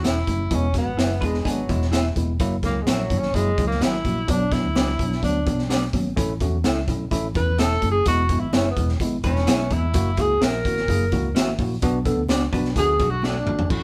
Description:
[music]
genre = uptempo 1960s-style soul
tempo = 127 BPM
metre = 4/4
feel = straight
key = E mixolydian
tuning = A4 = 440 Hz
[part]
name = breathy tenor saxophone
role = melody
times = 0.0-13.8 s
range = F#3 to B4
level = -27 LUFS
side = equal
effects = none
[part]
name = tine electric piano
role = accompaniment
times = 0.0-13.8 s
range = F#3 to A4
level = -29 LUFS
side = equal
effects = none
[part]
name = electric guitar through a small old amp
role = stabs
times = 0.0-13.4 s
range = C#4 to E5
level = -31 LUFS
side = equal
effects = none
[part]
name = vintage muted fingered electric bass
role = bass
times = 0.0-13.8 s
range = E1 to E2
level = -28 LUFS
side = equal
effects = none
[part]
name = raw garage drum kit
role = drums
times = 0.0-13.8 s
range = crash cymbal, hi-hat, kick drum, snare drum, toms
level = -27 LUFS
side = equal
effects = none
[part]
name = congas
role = percussion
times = 0.0-13.8 s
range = none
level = -37 LUFS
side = equal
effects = none
[part]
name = hollow-body jazz guitar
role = riff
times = 1.2-2.4, 9.2-13.7 s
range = G#3 to B4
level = -36 LUFS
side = equal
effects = none
[sound]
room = light reverb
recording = band playing live in one room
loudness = -22 LUFS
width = mono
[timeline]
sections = 0.0-13.7 A section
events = tenor saxophone solo 0.0-13.7; drum fill 13.2-13.7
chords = 0.0 A; 0.5 E; 2.4 F#7; 4.3 Bm; 6.2 A; 8.1 E; 9.9 F#7; 11.8 Bm; 12.8 D

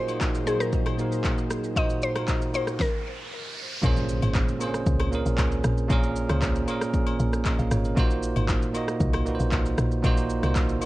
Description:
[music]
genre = amapiano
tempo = 116 BPM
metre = 4/4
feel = straight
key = Bb minor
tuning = A4 = 441 Hz
[part]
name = mallet-like synth pluck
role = melody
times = 0.0-3.5 s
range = Ab4 to Eb5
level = -30 LUFS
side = left 1 dB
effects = chorus, ping-pong delay
[part]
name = bell-like tine electric piano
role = accompaniment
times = 0.0-10.9 s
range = Bb2 to F5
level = -28 LUFS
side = right 2 dB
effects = none
[part]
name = warm analog pad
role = sustained chords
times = 0.0-2.8 s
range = Bb2 to C5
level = -34 LUFS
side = left 2 dB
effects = chorus, sidechain pumping
[part]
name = deep house drum kit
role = drums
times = 0.1-10.9 s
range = handclaps, kick drum, rim click, shaker, snare drum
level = -27 LUFS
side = equal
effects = overdrive, vintage 12-bit sampler grit
[part]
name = agogo bells and woodblock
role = percussion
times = 0.1-10.9 s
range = none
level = -39 LUFS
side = left 9 dB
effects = none
[part]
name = riser and impact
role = sound effects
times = 2.5-5.9 s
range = none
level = -36 LUFS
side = left 1 dB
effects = none
[part]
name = woody log drum bass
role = bass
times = 3.8-10.8 s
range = Ab1 to Db2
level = -26 LUFS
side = equal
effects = none
[sound]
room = digital ambience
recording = worn, warbling old tape, cassette tape, warbly pitch drift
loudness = -22 LUFS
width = side -17 dB against mid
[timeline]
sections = 0.0-3.8 A section; 3.8-10.9 B section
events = riser 2.5-3.8; stop 2.8-3.8; drop 3.8-10.9; impact 3.8-5.9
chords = 0.0 Ab9/Bb; 3.8 Bbm9; 8.0 Ab9

